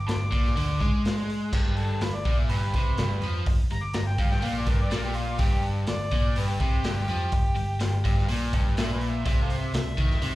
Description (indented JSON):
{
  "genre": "blues rock power trio and southern rock",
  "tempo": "124 BPM",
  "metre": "4/4",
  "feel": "straight",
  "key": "unclear",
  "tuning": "A4 = 442 Hz",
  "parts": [
    { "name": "overdriven harmonica", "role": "melody", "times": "0.0-10.3 s", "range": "F4 to D6", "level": "-33 LUFS", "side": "equal", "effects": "slapback echo" },
    { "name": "overdriven electric guitar", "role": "riff", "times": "0.0-10.3 s", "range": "G2 to Ab3", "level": "-30 LUFS", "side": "left 1 dB", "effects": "slapback echo" },
    { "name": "vintage muted picked electric bass", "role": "bass", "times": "0.0-10.3 s", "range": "G1 to Ab2", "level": "-29 LUFS", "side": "equal", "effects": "none" },
    { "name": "raw garage drum kit", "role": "drums", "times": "0.1-10.3 s", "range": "crash cymbal, hi-hat, kick drum, snare drum", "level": "-27 LUFS", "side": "equal", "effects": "none" }
  ],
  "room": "light reverb",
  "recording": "live gig heard through the venue's PA, club reverb",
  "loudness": "-23 LUFS",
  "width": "side -17 dB against mid",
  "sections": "0.0-1.5 A section; 1.5-10.3 B section",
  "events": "harmonica solo 1.5-10.3",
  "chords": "0.0 G5; 0.6 N.C.; 9.3 C",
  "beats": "0.08 0.56 1.04 | 1.53 2.01 2.50 2.98 | 3.46 3.95 4.43 4.91 | 5.40 5.88 6.36 6.85 | 7.33 7.81 8.29 8.78 | 9.26 9.74 10.22"
}